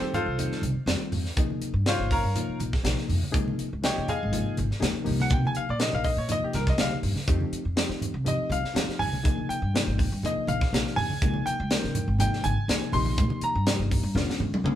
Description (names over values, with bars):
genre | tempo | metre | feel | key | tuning
electric jazz fusion | 122 BPM | 4/4 | straight | unclear | A4 = 440 Hz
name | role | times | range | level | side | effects
bright grand piano | melody | 0.0-14.1 s | C4 to C6 | -30 LUFS | equal | none
reed electric piano | accompaniment | 0.0-14.8 s | C3 to Bb4 | -32 LUFS | left 2 dB | none
upright bass | bass | 0.0-14.7 s | G1 to F3 | -29 LUFS | equal | none
tight funk drum kit | drums | 0.1-14.8 s | hi-hat, kick drum, snare drum, toms | -28 LUFS | equal | none
congas | percussion | 0.1-14.5 s | none | -34 LUFS | right 2 dB | none
room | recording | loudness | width
moderate studio reverb, RT60 0.9 s | band playing live in one room | -24 LUFS | side -11 dB against mid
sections
0.0-14.8 A section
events
grand piano solo 0.0-14.8; drum fill 14.2-14.8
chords
0.0 F9; 1.4 Dbmaj9; 5.1 Cm7; 7.3 F9; 9.2 Bbsus2; 11.2 Dbmaj9#11; 12.9 Bbsus2; 14.2 Db7b9